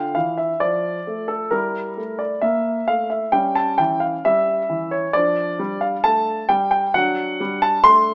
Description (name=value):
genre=classical-period piano sonatina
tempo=133 BPM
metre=4/4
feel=rubato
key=D minor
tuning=A4 = 440 Hz
part: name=clear grand piano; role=solo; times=0.0-8.1 s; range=D3 to C6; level=-17 LUFS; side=equal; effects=none
room=moderate large studio reverb, RT60 1.4 s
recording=small speaker sound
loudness=-17 LUFS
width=side -31 dB against mid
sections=0.0-8.1 A section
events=none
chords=0.0 Dm; 1.5 Edim/G; 3.3 Em6; 5.1 Dm/F; 6.9 D7/F#